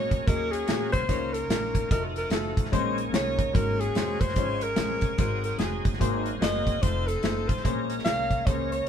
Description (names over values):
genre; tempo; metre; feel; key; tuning
uptempo gospel; 147 BPM; 4/4; swing 62% on 8ths; unclear; A4 = 435 Hz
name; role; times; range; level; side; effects
breathy alto saxophone; melody; 0.0-8.9 s; Ab4 to F5; -29 LUFS; left 1 dB; none
warm grand piano; accompaniment; 0.0-8.7 s; Ab2 to Eb5; -32 LUFS; left 4 dB; none
bright tonewheel organ; sustained chords; 0.0-8.9 s; Eb3 to Bb4; -36 LUFS; right 1 dB; overdrive, chorus vibrato, slow rotary speaker
upright bass; bass; 0.0-8.8 s; F1 to Eb2; -33 LUFS; equal; none
modern studio drum kit; drums; 0.1-8.9 s; hi-hat, kick drum, snare drum; -27 LUFS; right 1 dB; none
room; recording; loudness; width
light reverb; band playing live in one room; -24 LUFS; side -8 dB against mid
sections
0.0-8.9 A section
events
none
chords
0.0 Ab9sus4; 1.1 Db69; 1.9 F7b9; 2.7 Bbm11; 3.5 Ab9sus4; 4.4 Db/Ab; 5.2 Ab7; 6.0 Ab9; 6.8 F7; 7.6 Bbm9